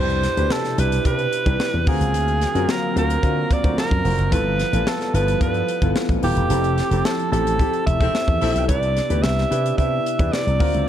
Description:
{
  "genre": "polished 1980s jazz-funk pop",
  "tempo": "110 BPM",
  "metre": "4/4",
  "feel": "straight",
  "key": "C major",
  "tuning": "A4 = 440 Hz",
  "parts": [
    { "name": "edgy alto saxophone", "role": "melody", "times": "0.0-10.9 s", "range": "G4 to E5", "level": "-23 LUFS", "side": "right 2 dB", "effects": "none" },
    { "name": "clear grand piano", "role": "accompaniment", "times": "0.0-10.9 s", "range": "B3 to C5", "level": "-25 LUFS", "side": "left 2 dB", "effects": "wide subtle chorus" },
    { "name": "hollow soft pad", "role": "sustained chords", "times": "0.0-10.9 s", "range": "B2 to E#5", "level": "-30 LUFS", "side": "equal", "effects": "chorus" },
    { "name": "slap bass with an envelope filter", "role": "bass", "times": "0.0-10.8 s", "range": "Eb1 to D3", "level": "-22 LUFS", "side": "equal", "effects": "none" },
    { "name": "crisp fusion drum kit", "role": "drums", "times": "0.1-10.9 s", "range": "hi-hat, kick drum, snare drum", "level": "-24 LUFS", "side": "equal", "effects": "none" },
    { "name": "mellow horn section", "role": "second line", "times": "8.0-8.6 s", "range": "C4 to E5", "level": "-31 LUFS", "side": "left 3 dB", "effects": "none" }
  ],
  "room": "light reverb",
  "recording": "dark, warm production",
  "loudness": "-18 LUFS",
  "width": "side -10 dB against mid",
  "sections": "0.0-10.9 A section",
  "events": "band accent 6.5-8.7",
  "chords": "0.0 Cmaj7; 1.9 D7alt; 4.3 G13; 6.5 Fmaj7; 8.7 Cmaj7"
}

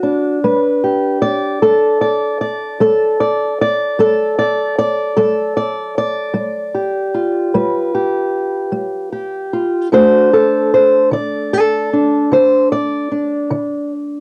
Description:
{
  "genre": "acoustic country blues, solo or duo",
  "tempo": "50 BPM (dotted quarters)",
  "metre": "12/8",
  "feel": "straight",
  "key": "unclear",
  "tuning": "A4 = 436 Hz",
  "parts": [
    { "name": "fingerpicked old ladder-braced acoustic guitar", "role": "solo", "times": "0.0-14.2 s", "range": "D3 to D5", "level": "-16 LUFS", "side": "equal", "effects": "cassette tape" }
  ],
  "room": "moderate studio reverb, RT60 0.5 s",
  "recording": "home recording on cassette",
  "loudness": "-16 LUFS",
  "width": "mono",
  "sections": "0.0-14.2 A section",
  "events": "none",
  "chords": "0.4 G7; 9.9 D7(no3)"
}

